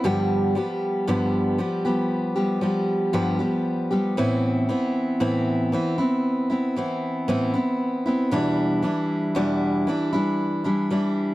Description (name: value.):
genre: pop.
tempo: 58 BPM.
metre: 4/4.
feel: straight.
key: A minor.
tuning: A4 = 440 Hz.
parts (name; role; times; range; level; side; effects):
picked steel-string acoustic guitar; solo; 0.0-11.3 s; E2 to G4; -21 LUFS; equal; none.
room: little or no reverb.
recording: dry, close 1970s-style studio recording.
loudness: -21 LUFS.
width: side -16 dB against mid.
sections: 0.0-11.3 A section.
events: none.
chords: 0.0 G7; 4.2 Amadd9; 8.3 Em7.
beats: | 0.04 1.07 2.11 3.14 | 4.18 5.21 6.25 7.28 | 8.32 9.35 10.38.